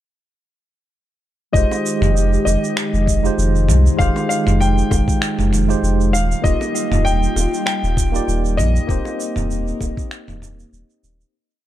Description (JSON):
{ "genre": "sunset chillout", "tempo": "98 BPM", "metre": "4/4", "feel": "swing 55% on 16ths", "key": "F minor", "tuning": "A4 = 441 Hz", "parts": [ { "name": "warm concert grand piano", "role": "melody", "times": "1.5-10.7 s", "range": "Eb5 to G5", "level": "-24 LUFS", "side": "left 2 dB", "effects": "analog delay" }, { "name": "bright tine electric piano", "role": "accompaniment", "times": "1.5-11.4 s", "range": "Ab3 to Eb5", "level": "-23 LUFS", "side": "moving between left 3 dB and right 6 dB", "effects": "medium stereo tremolo, auto-pan, low-pass filter, tape echo" }, { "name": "airy breathy pad", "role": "sustained chords", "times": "1.5-11.3 s", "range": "Eb3 to G4", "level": "-25 LUFS", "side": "right 1 dB", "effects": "chorus" }, { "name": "warm sub bass", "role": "bass", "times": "1.5-11.2 s", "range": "Eb1 to C2", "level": "-17 LUFS", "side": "equal", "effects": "none" }, { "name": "electronic kick drum", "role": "drums", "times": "1.5-10.1 s", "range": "none", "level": "-20 LUFS", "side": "equal", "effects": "none" }, { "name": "dusty soul sampler-style drum kit", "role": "drums", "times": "1.6-11.3 s", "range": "finger snaps, shaker, toms", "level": "-25 LUFS", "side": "right 2 dB", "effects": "none" }, { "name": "bongos", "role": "percussion", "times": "1.7-9.9 s", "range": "none", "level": "-32 LUFS", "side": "left 5 dB", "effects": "none" } ], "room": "light reverb, digital ambience", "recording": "echo-heavy mix", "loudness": "-15 LUFS", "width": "side -13 dB against mid", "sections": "1.5-11.3 groove", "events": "fade-out 8.1-11.3", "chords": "1.5 Fm9; 6.1 Ebmaj9; 8.9 Cm7/Eb" }